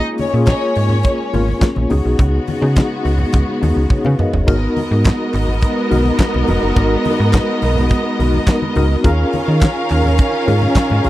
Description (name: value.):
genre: disco.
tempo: 105 BPM.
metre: 4/4.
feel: straight.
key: G# dorian.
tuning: A4 = 440 Hz.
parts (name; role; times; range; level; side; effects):
tine electric piano; accompaniment; 0.0-11.1 s; A#3 to E#5; -20 LUFS; left 2 dB; medium tremolo.
clear studio string section; sustained chords; 0.0-11.1 s; C#3 to A#4; -24 LUFS; equal; none.
slap-like FM bass; bass; 0.0-11.1 s; E#1 to D#3; -16 LUFS; equal; none.
rich studio string section; second line; 0.2-11.1 s; B3 to E#5; -20 LUFS; right 1 dB; tape echo.
modern studio drum kit; drums; 0.2-11.1 s; crash cymbal, handclaps, hi-hat, kick drum, snare drum, toms; -14 LUFS; equal; none.
congas; percussion; 0.2-11.1 s; none; -26 LUFS; left 3 dB; none.
group handclap; percussion; 5.1-10.9 s; none; -32 LUFS; right 4 dB; none.
room: little or no reverb.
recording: dry, close 1970s-style studio recording.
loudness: -13 LUFS.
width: side -15 dB against mid.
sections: 0.0-4.5 A section; 4.5-11.1 B section.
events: drum fill 3.9-4.5.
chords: 0.0 A#m7; 1.9 C#7sus4; 4.5 G#m9; 9.0 D#9sus4.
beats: 0.47 1.05 1.62 | 2.19 2.76 3.34 3.91 | 4.48 5.05 5.62 6.19 | 6.76 7.34 7.91 8.48 | 9.05 9.62 10.19 10.76.